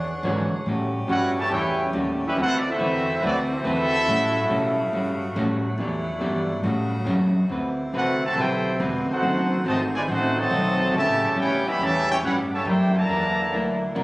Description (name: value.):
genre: jazz, big band swing.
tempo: 140 BPM.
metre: 4/4.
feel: swing 67% on 8ths.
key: unclear.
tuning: A4 = 440 Hz.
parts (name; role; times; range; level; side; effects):
vintage hollow-body jazz guitar; accompaniment; 0.0-14.0 s; A2 to C#5; -27 LUFS; equal; none.
edgy saxophone section; sustained chords; 0.0-14.0 s; C#3 to F#5; -32 LUFS; equal; none.
upright bass; bass; 0.0-14.0 s; E1 to B2; -27 LUFS; equal; none.
warm baby grand piano; accompaniment; 0.2-0.5 s; D3 to F#4; -30 LUFS; right 1 dB; none.
clear trumpet section; melody; 1.1-5.2, 8.0-13.8 s; C4 to B5; -24 LUFS; equal; none.
clear trombone section; second line; 1.1-5.2, 8.0-13.8 s; C3 to G4; -27 LUFS; equal; none.
room: moderate large studio reverb, RT60 1.3 s.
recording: recorded on a phone in the room, club reverb.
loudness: -20 LUFS.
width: side -21 dB against mid.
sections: 0.7-14.0 A section.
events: none.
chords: 0.0 E13; 0.7 A13; 2.4 D13; 4.1 A13; 5.8 Em7; 6.6 A6; 7.5 D13; 9.2 D#dim7; 10.9 A13; 12.7 F#7alt.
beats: 0.23 | 0.66 1.09 1.51 1.94 | 2.37 2.80 3.22 3.65 | 4.08 4.50 4.93 5.36 | 5.79 6.22 6.64 7.07 | 7.50 7.93 8.36 8.79 | 9.22 9.65 10.08 10.51 | 10.94 11.37 11.79 12.22 | 12.65 13.08 13.51 13.94.